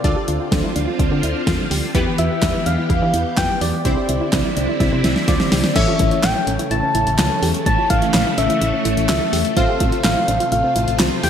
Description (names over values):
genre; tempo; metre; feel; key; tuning
synth-pop; 126 BPM; 4/4; straight; unclear; A4 = 440 Hz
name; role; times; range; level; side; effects
soft struck synth lead; melody; 0.0-11.3 s; D5 to A5; -21 LUFS; left 1 dB; chorus
funky polysynth comp; accompaniment; 0.0-11.3 s; E3 to D5; -25 LUFS; left 1 dB; chorus
phased string machine; sustained chords; 0.0-11.3 s; C3 to G4; -24 LUFS; equal; ensemble chorus, phaser
soft round pluck; arpeggios; 0.0-11.3 s; C4 to G4; -28 LUFS; right 3 dB; chorus, digital delay
solid FM bass; bass; 0.0-11.3 s; A1 to E3; -22 LUFS; equal; none
deep house drum kit; drums; 0.0-11.3 s; crash cymbal, handclaps, hi-hat, kick drum, snare drum; -20 LUFS; equal; gated reverb
room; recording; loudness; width
moderate lush hall reverb, RT60 1.8 s; bright 1980s-style digital production; -15 LUFS; side -8 dB against mid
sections
0.0-5.8 A section; 5.8-11.3 B section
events
drum fill 4.8-5.8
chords
0.0 Dm7; 1.9 Em; 3.9 Cadd9; 5.8 A; 9.6 F/A